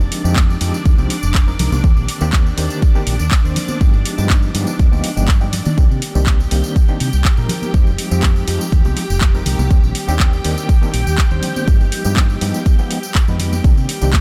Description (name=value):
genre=filtered disco house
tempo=122 BPM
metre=4/4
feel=straight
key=C minor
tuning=A4 = 439 Hz
part: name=overdriven reed electric piano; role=accompaniment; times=0.0-14.2 s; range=Eb3 to C5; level=-26 LUFS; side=equal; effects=fast tremolo, phaser, sidechain pumping
part: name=string machine, full ensemble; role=sustained chords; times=0.0-14.2 s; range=D4 to G5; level=-30 LUFS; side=equal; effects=ensemble chorus, sidechain pumping
part: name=fingered electric bass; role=bass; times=0.0-14.2 s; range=F1 to Eb3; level=-21 LUFS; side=equal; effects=tube saturation, sidechain pumping
part: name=tambourine and congas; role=percussion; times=0.0-14.2 s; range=none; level=-31 LUFS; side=equal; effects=sidechain pumping on perc
part: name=house drum kit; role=drums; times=0.1-14.2 s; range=handclaps, hi-hat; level=-26 LUFS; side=equal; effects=sidechain pumping on cymbals, sidechain pumping on hats
part: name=electronic kick drum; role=drums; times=0.4-14.2 s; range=none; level=-15 LUFS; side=equal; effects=none
room=little or no reverb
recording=none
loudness=-16 LUFS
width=mono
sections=0.0-14.2 A section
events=none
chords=0.0 Fm9; 1.8 Cm9; 3.8 G7b9b13; 5.8 Cm9; 7.5 Fm9; 9.7 Cm9; 11.7 G7b9b13; 13.6 Cm9